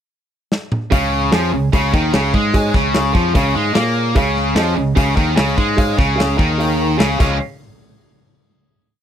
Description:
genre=classic rock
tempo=148 BPM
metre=4/4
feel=straight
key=Db major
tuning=A4 = 438 Hz
part: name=big rock drum kit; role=drums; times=0.5-7.3 s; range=crash cymbal, hi-hat, kick drum, snare drum, toms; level=-18 LUFS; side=equal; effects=none
part: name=warm baby grand piano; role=accompaniment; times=0.9-7.4 s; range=Ab4 to Db6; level=-24 LUFS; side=right 4 dB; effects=none
part: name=overdriven electric guitar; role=riff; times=0.9-7.4 s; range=Db3 to Db4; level=-20 LUFS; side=left 13 dB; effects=none
part: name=tight distorted guitar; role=riff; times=0.9-7.4 s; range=Db3 to F4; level=-21 LUFS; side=right 14 dB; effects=distortion
part: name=growling fingered electric bass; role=bass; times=0.9-7.4 s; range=Db2 to Bb2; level=-20 LUFS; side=equal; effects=overdrive
room=little or no reverb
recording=dry, close 1970s-style studio recording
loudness=-14 LUFS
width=side -9 dB against mid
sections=0.0-0.9 pickup bar; 0.9-7.4 riff; 7.4-9.0 final hit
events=drum fill 0.5-0.9; grand piano fill 2.9-4.2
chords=0.0 N.C.; 0.9 Db; 7.4 N.C.

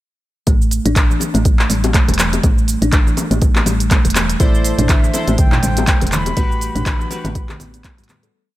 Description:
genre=afro house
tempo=122 BPM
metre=4/4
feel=swing 57% on 16ths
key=A dorian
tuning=A4 = 440 Hz
part: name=kalimba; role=arpeggios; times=0.5-8.3 s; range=E3 to A4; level=-22 LUFS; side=right 1 dB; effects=sidechain pumping, digital delay
part: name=woody FM bass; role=bass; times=0.5-8.3 s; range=E1 to A2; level=-19 LUFS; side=equal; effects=sidechain pumping
part: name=deep house drum kit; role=drums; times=0.5-8.3 s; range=handclaps, hi-hat, shaker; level=-20 LUFS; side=right 1 dB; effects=none
part: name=electronic kick drum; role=drums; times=0.5-8.0 s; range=none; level=-15 LUFS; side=equal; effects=none
part: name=bongos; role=percussion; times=0.5-8.2 s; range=none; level=-26 LUFS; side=left 5 dB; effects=none
part: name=bright reedy bansuri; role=melody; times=4.4-7.8 s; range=D5 to D6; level=-26 LUFS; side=equal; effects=digital delay
part: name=warm analog keys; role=stabs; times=4.4-8.3 s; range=E4 to C5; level=-26 LUFS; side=left 1 dB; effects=chorus, sidechain pumping
part: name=congas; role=percussion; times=4.8-8.2 s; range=none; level=-25 LUFS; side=right 1 dB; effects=none
room=studio reverb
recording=none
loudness=-13 LUFS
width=side -16 dB against mid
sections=0.5-8.3 drop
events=drop 0.5-8.3; fade-out 5.7-8.3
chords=0.5 A5; 4.4 C6/A; 6.4 Gmaj7/A

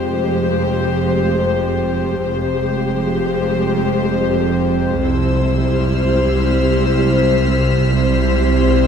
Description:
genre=cinematic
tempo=86 BPM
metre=4/4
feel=straight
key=F harmonic minor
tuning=A4 = 440 Hz
part: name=warm symphonic violin section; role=melody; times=0.0-8.9 s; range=C5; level=-22 LUFS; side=left 5 dB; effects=none
part: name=warm studio viola section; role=accompaniment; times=0.0-8.9 s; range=G3 to G4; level=-21 LUFS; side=equal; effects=none
part: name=glass harmonica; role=sustained chords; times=0.0-8.9 s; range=E4 to G5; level=-25 LUFS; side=left 5 dB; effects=none
part: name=dark studio cello section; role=bass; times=0.0-8.9 s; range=F2 to C3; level=-21 LUFS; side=right 2 dB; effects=none
part: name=warm studio double bass section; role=bass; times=0.0-8.9 s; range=F1 to C2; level=-21 LUFS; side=right 1 dB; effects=none
part: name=bowed-like drone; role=drone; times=0.0-8.9 s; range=C2 to F2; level=-23 LUFS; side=right 2 dB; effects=built-in reverb
part: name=warm studio violin section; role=texture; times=5.0-8.9 s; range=E6 to B6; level=-27 LUFS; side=left 4 dB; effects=none
room=moderate scoring stage reverb, RT60 1.6 s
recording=minimal, uncompressed stereo recording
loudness=-14 LUFS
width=side -7 dB against mid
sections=0.0-8.9 A section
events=none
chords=0.0 Fmadd9; 5.0 C

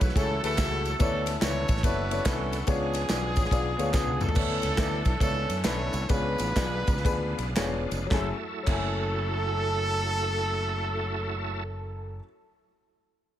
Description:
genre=uptempo gospel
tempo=107-143 BPM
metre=4/4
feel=swing 64% on 8ths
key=F# minor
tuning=A4 = 442 Hz
part: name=clear horn section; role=melody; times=0.0-12.2 s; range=B3 to C#5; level=-31 LUFS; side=right 1 dB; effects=none
part: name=warm upright piano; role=accompaniment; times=0.0-12.2 s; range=F#2 to G#5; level=-32 LUFS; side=left 4 dB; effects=none
part: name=bright tonewheel organ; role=sustained chords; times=0.0-11.6 s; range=C#3 to A4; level=-36 LUFS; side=right 2 dB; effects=slow rotary speaker, chorus vibrato
part: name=fingered electric bass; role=bass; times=0.0-12.2 s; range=E1 to F#2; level=-32 LUFS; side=equal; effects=none
part: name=natural country drum kit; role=drums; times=0.0-8.9 s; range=crash cymbal, kick drum, ride cymbal, snare drum, toms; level=-28 LUFS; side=equal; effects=none
part: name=tambourine and handclaps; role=percussion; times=0.0-8.9 s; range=none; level=-39 LUFS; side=right 2 dB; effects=none
room=little or no reverb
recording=none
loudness=-25 LUFS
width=side -11 dB against mid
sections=0.0-4.4 A section; 4.4-8.1 B section; 8.1-12.6 C section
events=upright piano fill 3.1-4.4; drum fill 3.9-4.4; slowing down 4.4-8.1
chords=0.0 F#m9; 1.0 Bm11; 2.7 C#7b9; 4.4 Bm11; 6.1 C#7b9; 8.1 F#m9

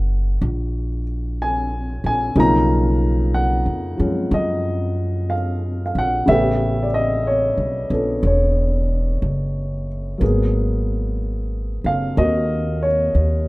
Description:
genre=jazz ballad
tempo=61 BPM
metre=4/4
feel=swing 67% on 8ths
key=unclear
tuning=A4 = 441 Hz
part: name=warm grand piano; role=accompaniment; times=0.0-13.5 s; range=C#3 to A#5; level=-20 LUFS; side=equal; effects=none
part: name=upright bass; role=bass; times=0.0-13.5 s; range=E1 to F#2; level=-20 LUFS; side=equal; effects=none
room=moderate small room reverb, RT60 0.5 s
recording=rough home demo mix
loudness=-18 LUFS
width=side -21 dB against mid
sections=0.0-13.5 A section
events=none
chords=0.0 Gb9; 2.4 Bmaj9#11; 6.3 A9; 10.2 Abm9

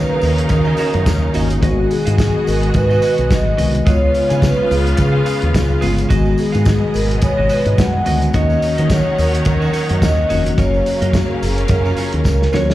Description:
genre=disco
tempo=107 BPM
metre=4/4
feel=swing 56% on 16ths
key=G# dorian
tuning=A4 = 440 Hz
part: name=vibraphone with soft mallets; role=melody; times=0.0-12.7 s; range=F#4 to F#5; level=-20 LUFS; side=equal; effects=slapback echo, tape echo
part: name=clear studio string section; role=second line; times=0.0-12.7 s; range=B3 to F#5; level=-27 LUFS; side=right 1 dB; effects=slapback echo
part: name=tine electric piano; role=accompaniment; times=0.0-12.7 s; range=C#3 to F#4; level=-22 LUFS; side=left 2 dB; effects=overdrive, fast stereo tremolo
part: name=clear studio string section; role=sustained chords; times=0.0-12.7 s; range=B2 to F#4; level=-24 LUFS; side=equal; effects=none
part: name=fingered electric bass with an envelope filter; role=bass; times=0.0-12.7 s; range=E#1 to D#3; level=-17 LUFS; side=equal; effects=none
part: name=clean electric guitar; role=accompaniment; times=0.1-12.7 s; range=D#4 to G#5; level=-31 LUFS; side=right 5 dB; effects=wide subtle chorus, slapback echo
part: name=warm soul drum kit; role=drums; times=0.2-12.7 s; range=hi-hat, kick drum, snare drum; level=-19 LUFS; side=equal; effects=none
part: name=tambourine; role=percussion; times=0.2-12.7 s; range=none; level=-39 LUFS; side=left 2 dB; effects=none
room=small room ambience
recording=live gig heard through the venue's PA, club reverb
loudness=-13 LUFS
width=side -15 dB against mid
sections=0.0-12.7 A section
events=drum fill 12.3-12.7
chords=0.0 D#m7; 1.6 G#m7; 3.9 C#7; 6.1 G#m7; 8.3 D#m7; 10.6 F#maj7

